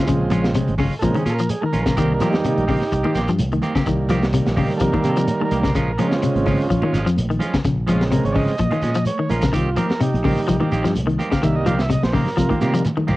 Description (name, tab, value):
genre	afrobeat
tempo	127 BPM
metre	4/4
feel	swing 54% on 16ths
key	unclear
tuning	A4 = 440 Hz
part	combo organ	accompaniment	0.0-12.8 s	Db3 to F5	-22 LUFS	right 2 dB	none
part	clean electric guitar	arpeggios	0.0-13.1 s	C3 to F3	-22 LUFS	left 3 dB	none
part	semi-hollow electric guitar	stabs	0.0-13.2 s	Eb3 to G4	-28 LUFS	right 2 dB	none
part	fingered electric bass	bass	0.1-13.2 s	Ab1 to C3	-23 LUFS	equal	none
part	crunchy breakbeat drum kit	drums	0.1-13.2 s	hi-hat, kick drum, snare drum, toms	-26 LUFS	equal	cassette tape
part	congas	percussion	0.1-13.2 s	none	-29 LUFS	right 4 dB	none
part	shekere	percussion	0.1-13.2 s	none	-29 LUFS	right 1 dB	none
room	light reverb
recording	home recording on cassette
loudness	-17 LUFS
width	side -18 dB against mid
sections	0.0-13.2 A section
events	transistor combo organ solo 0.0-13.2; drum fill 12.4-13.2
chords	0.0 Bbm7; 2.0 Cm7; 5.8 Bbm7; 9.5 Cm7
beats	| 0.07 0.55 1.02 1.50 | 1.97 2.44 2.92 3.39 | 3.87 4.34 4.81 5.29 | 5.76 6.23 6.71 7.18 | 7.65 8.12 8.60 9.07 | 9.54 10.02 10.49 10.96 | 11.43 11.91 12.38 12.85